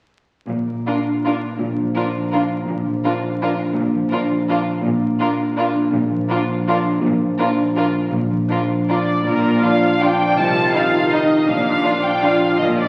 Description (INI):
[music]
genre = classical, orchestral ballroom waltz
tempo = 150-181 BPM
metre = 3/4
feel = rubato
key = Bb major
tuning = A4 = 440 Hz
[part]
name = concert harp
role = arpeggios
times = 0.5-12.9 s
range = Bb2 to F4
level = -24 LUFS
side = equal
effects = none
[part]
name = clear studio cello section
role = bass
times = 0.5-12.9 s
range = Bb2 to C3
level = -27 LUFS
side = equal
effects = none
[part]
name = clear studio double bass section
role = bass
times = 0.5-12.9 s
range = Bb1 to C2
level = -34 LUFS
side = equal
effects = none
[part]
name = rich studio violin section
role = melody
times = 0.9-12.9 s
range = Bb4 to A5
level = -25 LUFS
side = equal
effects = none
[part]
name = rich studio violin section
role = second line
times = 0.9-12.3 s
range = D4 to F4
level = -27 LUFS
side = equal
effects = none
[part]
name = rich studio viola section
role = accompaniment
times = 0.9-12.9 s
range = D4 to F4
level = -26 LUFS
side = equal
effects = none
[part]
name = mellow French horn section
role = sustained chords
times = 9.3-12.9 s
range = Eb3 to Eb4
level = -26 LUFS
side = equal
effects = none
[sound]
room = wet concert hall reverb, RT60 1.7 s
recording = very old 78 rpm record, vinyl crackle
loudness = -19 LUFS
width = mono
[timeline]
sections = 0.5-9.3 A section; 9.3-12.9 B section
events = none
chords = 0.5 Bb; 10.4 Adim/C; 11.5 Bb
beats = | 0.49 0.87 1.26 | 1.60 1.96 2.34 | 2.69 3.05 3.42 | 3.77 4.13 4.50 | 4.85 5.20 5.57 | 5.93 6.29 6.68 | 7.04 7.39 7.77 | 8.12 8.49 8.89 | 9.27 9.63 10.02 | 10.38 10.75 11.13 | 11.48 11.85 12.23 | 12.59